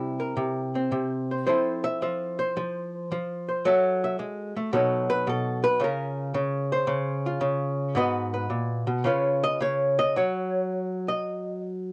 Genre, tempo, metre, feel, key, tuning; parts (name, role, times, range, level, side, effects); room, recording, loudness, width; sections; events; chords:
solo jazz; 110 BPM; 4/4; swing 69% on 8ths, rubato; A4 = 440 Hz
archtop guitar, miked and amplified; solo; 0.0-11.9 s; Ab2 to E5; -27 LUFS; equal
moderate booth ambience, RT60 0.2 s; home recording on cassette; -27 LUFS; mono
0.0-10.2 A section; 10.2-11.9 A section
hollow-body jazz guitar solo 0.0-11.9
0.0 C7; 1.5 Fmaj7; 3.7 Gbm7; 4.7 Cb9; 5.8 Dbmaj7; 8.0 Abm7; 9.0 Db7; 10.2 N.C.